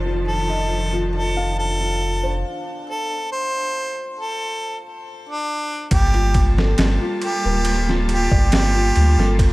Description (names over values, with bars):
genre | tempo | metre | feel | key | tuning
trip hop | 69 BPM | 4/4 | straight | G minor | A4 = 445 Hz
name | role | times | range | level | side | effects
clear studio string section | sustained chords | 0.0-9.5 s | Eb3 to A5 | -27 LUFS | right 1 dB | none
felt-muted upright piano | arpeggios | 0.0-9.5 s | F4 to F5 | -28 LUFS | left 2 dB | tape echo
soft dub sub bass | bass | 0.0-9.5 s | D1 to D2 | -19 LUFS | equal | tube saturation
backwards swelling texture | texture | 0.0-9.5 s | G3 to D5 | -39 LUFS | right 1 dB | none
clear harmonica | melody | 0.3-9.3 s | D4 to C5 | -24 LUFS | equal | tape echo
trip hop sampler-style drum kit | drums | 5.9-9.5 s | kick drum, ride cymbal, snare drum | -20 LUFS | equal | overdrive
room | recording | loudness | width
little or no reverb | none | -18 LUFS | side -20 dB against mid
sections
0.0-5.9 A section; 5.9-9.5 B section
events
filter sweep on felt piano 0.0-5.9; break 2.4-5.9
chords
0.0 F7; 5.9 Gm9